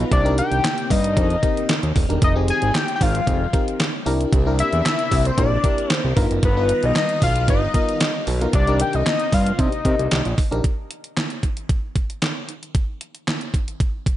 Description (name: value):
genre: early-eighties boogie funk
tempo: 114 BPM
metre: 4/4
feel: straight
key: unclear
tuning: A4 = 439 Hz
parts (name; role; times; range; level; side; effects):
- FM electric piano; accompaniment; 0.0-10.6 s; B3 to C5; -26 LUFS; left 1 dB; chorus
- phased string machine; sustained chords; 0.0-10.6 s; C3 to A#5; -30 LUFS; equal; ensemble chorus, phaser
- fat analog bass; bass; 0.0-10.6 s; Eb1 to C3; -21 LUFS; right 1 dB; none
- detuned 8-bit digital drum machine; drums; 0.0-14.2 s; handclaps, hi-hat, kick drum, snare drum; -21 LUFS; right 1 dB; overdrive, gated reverb
- fat analog lead; melody; 0.1-10.4 s; B4 to Ab5; -23 LUFS; left 3 dB; slapback echo
room: digital ambience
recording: nothing above 10.6 kHz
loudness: -18 LUFS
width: side -13 dB against mid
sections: 0.0-10.6 A section; 10.6-14.2 B section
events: none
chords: 0.1 Cm9; 2.2 Fm9; 4.1 C9; 6.2 G7alt; 8.5 Cm9; 10.6 N.C.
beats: | 0.12 0.64 1.17 1.69 | 2.22 2.75 3.27 3.80 | 4.33 4.85 5.38 5.91 | 6.43 6.96 7.48 8.01 | 8.54 9.06 9.59 10.12 | 10.64 11.17 11.69 12.22 | 12.75 13.27 13.80